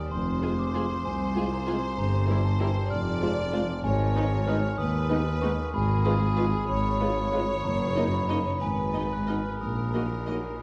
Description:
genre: cinematic.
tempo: 63 BPM (dotted quarters).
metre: 6/8.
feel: straight.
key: Eb minor from 3.8 s.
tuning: A4 = 440 Hz.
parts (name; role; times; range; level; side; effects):
glockenspiel with soft plastic mallets; melody; 0.0-10.6 s; G5 to Gb6; -35 LUFS; equal; none.
rich studio violin section; second line; 0.0-10.6 s; Ab4 to D5; -36 LUFS; equal; none.
bright studio double bass section; bass; 0.1-10.4 s; F1 to Eb2; -34 LUFS; equal; none.
dark tuba; bass; 0.1-10.6 s; F1 to Eb2; -35 LUFS; equal; none.
rich studio cello section; bass; 0.1-10.6 s; C2 to Bb2; -33 LUFS; equal; none.
warm studio violin section; melody; 0.4-10.3 s; Ab4 to Eb5; -43 LUFS; equal; none.
rich studio viola section; accompaniment; 0.4-10.4 s; G3 to Gb4; -38 LUFS; equal; none.
mellow French horn section; sustained chords; 0.4-10.4 s; Gb3 to F4; -39 LUFS; equal; none.
room: moderate scoring stage reverb, RT60 1.9 s.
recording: dark, warm production.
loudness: -27 LUFS.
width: mono.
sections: 0.0-10.6 A section.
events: none.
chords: 0.1 Fm; 2.0 Edim/G; 2.9 Fm; 3.8 Abm; 5.7 Fdim/Ab; 7.6 Ebm/Gb; 8.6 Abm; 9.6 Ebm/Bb.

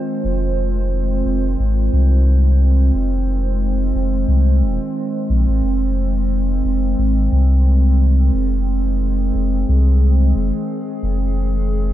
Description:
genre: ambient dub.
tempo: 89 BPM.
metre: 4/4.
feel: swing 54% on 16ths.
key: F minor.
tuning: A4 = 445 Hz.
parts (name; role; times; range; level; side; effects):
warbly tape-like pad; sustained chords; 0.0-11.9 s; Eb3 to C5; -22 LUFS; right 1 dB; chorus, built-in reverb.
warm sub bass; bass; 0.2-11.9 s; Eb1 to C2; -15 LUFS; equal; none.
room: light reverb.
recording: dark, warm production.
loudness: -15 LUFS.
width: side -13 dB against mid.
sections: 0.0-11.9 A section.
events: none.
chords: 0.0 Fm7.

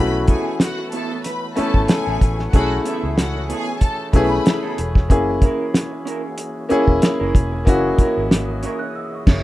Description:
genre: lush 1970s-style soul.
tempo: 94 BPM.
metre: 4/4.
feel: swing 54% on 16ths.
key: unclear.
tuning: A4 = 441 Hz.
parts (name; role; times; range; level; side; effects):
warm studio string section; second line; 0.0-4.7 s; E4 to B5; -28 LUFS; left 2 dB; none.
warm baby grand piano; accompaniment; 0.0-9.4 s; A3 to A4; -21 LUFS; left 1 dB; none.
tonewheel organ; sustained chords; 0.0-9.4 s; E3 to D#5; -33 LUFS; right 1 dB; overdrive, chorus vibrato, slow rotary speaker.
vintage muted fingered electric bass; bass; 0.0-9.4 s; E1 to C#2; -24 LUFS; equal; none.
electric guitar through a small old amp; riff; 0.3-9.4 s; B3 to C#5; -28 LUFS; right 5 dB; harmonic tremolo.
cloth-damped thuddy drum kit; drums; 0.3-9.4 s; crash cymbal, hi-hat, kick drum, snare drum; -15 LUFS; equal; none.
celesta; texture; 8.6-9.4 s; C#6 to F#6; -33 LUFS; right 2 dB; none.
room: light reverb.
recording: rough home demo mix.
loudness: -16 LUFS.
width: side -16 dB against mid.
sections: 0.0-9.4 A section.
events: band accent 8.9-9.4.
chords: 0.0 B7sus4; 5.1 F#7.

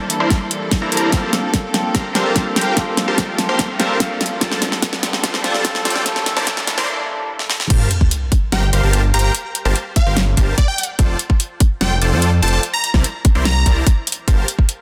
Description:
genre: future bass.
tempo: 146 BPM.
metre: 4/4.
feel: half-time.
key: G dorian.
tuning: A4 = 438 Hz.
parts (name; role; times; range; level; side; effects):
bell-like tine electric piano; accompaniment; 0.0-7.7 s; G3 to A4; -26 LUFS; equal; phaser, sidechain pumping, dub echo.
rich symphonic string section; sustained chords; 0.0-7.7 s; E3 to A4; -32 LUFS; equal; none.
riser and sub drop; sound effects; 0.0-9.3 s; none; -30 LUFS; equal; none.
pop drum kit; drums; 0.1-14.8 s; crash cymbal, hi-hat, snare drum; -23 LUFS; equal; overdrive.
dense compressed supersaw; riff; 0.2-14.5 s; E4 to C6; -25 LUFS; equal; sidechain pumping, low-pass filter, dub echo.
electronic kick drum; drums; 0.3-14.7 s; none; -17 LUFS; equal; none.
detuned saw bass; bass; 7.7-14.4 s; F1 to F2; -19 LUFS; equal; chorus, sidechain pumping.
plucky unison lead; melody; 8.5-13.8 s; D5 to Bb5; -25 LUFS; equal; phaser, sidechain pumping, digital delay.
room: moderate lush hall reverb, RT60 1.8 s.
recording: dense, heavily limited modern master, high-pass filter.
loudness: -17 LUFS.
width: mono.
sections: 0.0-7.7 A section; 7.7-14.8 B section.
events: build-up 0.0-7.7; drum fill 0.0-6.9, 7.4-7.7; filter sweep 0.0-7.7; break 6.9-7.7; drop 7.7-14.8; impact 7.7-9.3.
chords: 0.0 C13; 1.1 Gm11; 4.2 F6; 6.1 C13; 7.7 Gm11; 10.8 F6; 12.6 C13; 14.3 Gm11.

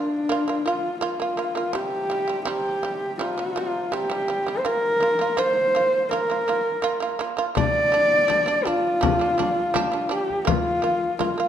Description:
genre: mongolian traditional, Mongolian folk.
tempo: 83 BPM.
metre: 4/4.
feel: straight.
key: Bb gong mode.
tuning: A4 = 440 Hz.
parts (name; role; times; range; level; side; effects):
dark horsehead fiddle; melody; 0.0-11.5 s; D4 to D5; -22 LUFS; equal; none.
shamisen; arpeggios; 0.0-11.5 s; C3 to F4; -27 LUFS; right 5 dB; none.
frame drum; percussion; 7.6-11.4 s; none; -26 LUFS; left 6 dB; none.
room: moderate recital hall reverb, RT60 1.9 s.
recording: dark, warm production.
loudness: -20 LUFS.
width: side -9 dB against mid.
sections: 0.0-7.6 A section; 7.6-11.5 B section.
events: none.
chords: 0.0 Bb5; 1.8 C5; 4.7 Bb5; 7.6 G5; 10.5 Bb5.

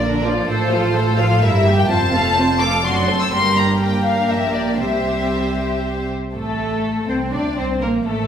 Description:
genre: quick classical-period movement for string orchestra.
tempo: 124 BPM.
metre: 3/4.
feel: rubato.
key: unclear.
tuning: A4 = 440 Hz.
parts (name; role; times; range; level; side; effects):
warm symphonic violin section; melody; 0.0-8.3 s; A3 to E6; -21 LUFS; left 3 dB; none.
rich studio violin section; second line; 0.0-8.3 s; D4 to F5; -23 LUFS; left 1 dB; none.
dark symphonic viola section; accompaniment; 0.0-8.3 s; D3 to A4; -23 LUFS; right 2 dB; none.
dark symphonic double bass section; bass; 0.0-8.3 s; F1 to D2; -24 LUFS; right 2 dB; none.
warm symphonic cello section; bass; 0.0-8.3 s; F2 to D4; -23 LUFS; right 2 dB; none.
room: wet recital hall reverb, RT60 1.4 s.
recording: recorded in a church or concert hall.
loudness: -16 LUFS.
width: side -8 dB against mid.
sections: 0.0-6.3 A section; 6.3-8.3 B section.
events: none.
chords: 0.5 F/A; 1.4 Edim/G; 1.9 F; 2.8 D7/F#; 3.3 Gm; 4.8 C; 6.3 Amadd11.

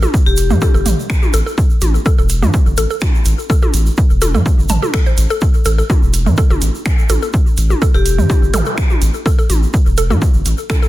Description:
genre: minimal techno.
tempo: 125 BPM.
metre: 4/4.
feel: swing 53% on 16ths.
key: unclear.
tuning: A4 = 440 Hz.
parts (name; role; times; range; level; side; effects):
mallet-like synth pluck; riff; 0.0-10.9 s; A4 to A5; -23 LUFS; equal; chorus, cassette tape, sidechain pumping, ping-pong delay.
saturated sub bass; bass; 0.0-10.5 s; E1 to A2; -15 LUFS; equal; sidechain pumping.
electronic toms; percussion; 0.0-10.8 s; none; -22 LUFS; right 2 dB; overdrive, tape echo.
tube shaker; percussion; 0.0-10.9 s; none; -28 LUFS; right 4 dB; none.
electronic kick drum; drums; 0.1-10.8 s; none; -14 LUFS; equal; none.
vibraphone with hard mallets; melody; 0.3-0.9, 7.9-8.6 s; G4; -22 LUFS; left 7 dB; tape echo.
garage drum kit; drums; 0.4-10.8 s; finger snaps, hi-hat; -24 LUFS; right 2 dB; soft clipping on snare.
zap; sound effects; 8.5-8.7 s; none; -24 LUFS; equal; none.
room: little or no reverb.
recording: dense, heavily limited modern master.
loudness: -11 LUFS.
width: side -16 dB against mid.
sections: 0.0-10.9 A section.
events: none.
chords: 0.0 A5.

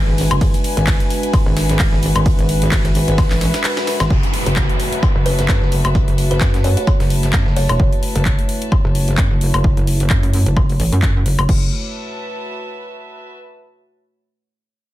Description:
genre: bass house.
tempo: 130 BPM.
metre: 4/4.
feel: swing 56% on 16ths.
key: F# minor.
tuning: A4 = 440 Hz.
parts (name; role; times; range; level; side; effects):
dark analog pad; sustained chords; 0.0-11.7 s; G#3 to C#5; -28 LUFS; right 2 dB; chorus, sidechain pumping.
metallic wobble bass; bass; 0.0-11.7 s; E1 to F#2; -17 LUFS; equal; distortion, chorus, tube saturation, sidechain pumping.
warm chamber string section; texture; 0.0-13.3 s; F#4 to A5; -27 LUFS; left 2 dB; sidechain pumping.
dusty soul sampler-style drum kit; drums; 0.1-7.7 s; hi-hat, snare drum; -29 LUFS; equal; high-pass filter on hats, studio reverb, high-pass filter on snare, high-pass filter on room.
house drum kit; drums; 0.2-11.6 s; crash cymbal, handclaps, hi-hat, ride cymbal, woodblock; -24 LUFS; left 2 dB; studio reverb.
electronic kick drum; drums; 0.4-11.6 s; none; -17 LUFS; equal; studio reverb.
downlifter; sound effects; 4.1-7.8 s; none; -27 LUFS; right 1 dB; none.
kalimba; melody; 5.3-7.8 s; B4 to C#5; -26 LUFS; right 1 dB; dub echo.
room: little or no reverb.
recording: dense, heavily limited modern master.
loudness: -14 LUFS.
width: side -15 dB against mid.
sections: 0.0-4.1 A section; 4.1-11.5 B section; 11.5-13.3 C section.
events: drop 0.0-4.1; kick drops out 3.6-4.1; fade-out on string section 4.1-11.5.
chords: 0.0 G#dim; 4.1 F#m.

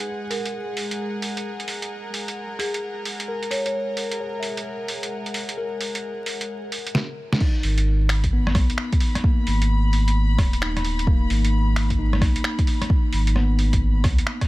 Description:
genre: future garage.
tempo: 131 BPM.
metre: 4/4.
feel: swing 64% on 16ths.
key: G# minor.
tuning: A4 = 437 Hz.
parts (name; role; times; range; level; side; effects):
tine electric piano; accompaniment; 0.0-14.5 s; A#3 to E5; -30 LUFS; left 2 dB; sidechain pumping, tape echo.
warm studio string section; sustained chords; 0.0-14.5 s; G#3 to B5; -32 LUFS; left 1 dB; vintage 12-bit sampler grit, sidechain pumping.
lo-fi sampler-style drum kit; drums; 0.0-14.5 s; crash cymbal, finger snaps, hi-hat, rim click, snare drum; -27 LUFS; right 1 dB; overdrive, small room ambience.
marimba with medium hard mallets; melody; 0.3-3.7 s; G#4 to C#5; -32 LUFS; right 1 dB; tape echo.
electronic kick drum; drums; 7.4-14.5 s; none; -20 LUFS; equal; overdrive, small room ambience.
warm sub bass; bass; 7.6-14.2 s; D#1 to C#2; -20 LUFS; equal; tube saturation, sidechain pumping.
room: little or no reverb.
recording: vinyl crackle.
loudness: -20 LUFS.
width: side -19 dB against mid.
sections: 0.0-7.4 A section; 7.4-14.5 B section.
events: drum fill 6.9-7.4.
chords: 0.1 F#/G#; 7.4 G#m.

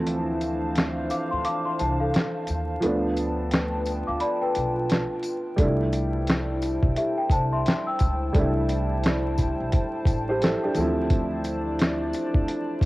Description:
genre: lo-fi hip hop.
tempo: 87 BPM.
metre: 4/4.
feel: swing 60% on 16ths.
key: C major.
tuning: A4 = 440 Hz.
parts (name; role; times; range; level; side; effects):
felt-muted upright piano; accompaniment; 0.0-12.9 s; E3 to C5; -28 LUFS; right 1 dB; low-pass filter, cassette tape.
warbly tape-like pad; sustained chords; 0.0-12.9 s; D4 to A5; -31 LUFS; equal; chorus, built-in reverb, low-pass filter, cassette tape.
upright bass; bass; 0.0-12.9 s; A1 to Eb2; -29 LUFS; equal; none.
dusty soul sampler-style drum kit; drums; 0.1-12.9 s; hi-hat, kick drum, snare drum; -24 LUFS; equal; cassette tape.
tambourine; percussion; 0.4-12.9 s; none; -45 LUFS; left 4 dB; none.
worn celesta; second line; 1.1-8.9 s; G4 to E6; -28 LUFS; left 1 dB; low-pass filter, cassette tape, tape echo.
room: light reverb, small room ambience.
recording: home recording on cassette, vinyl crackle.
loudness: -22 LUFS.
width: side -19 dB against mid.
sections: 0.0-12.9 A section.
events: break 0.0-5.6.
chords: 0.0 Dm7; 2.8 G9/D; 5.6 C6; 10.8 Dm7.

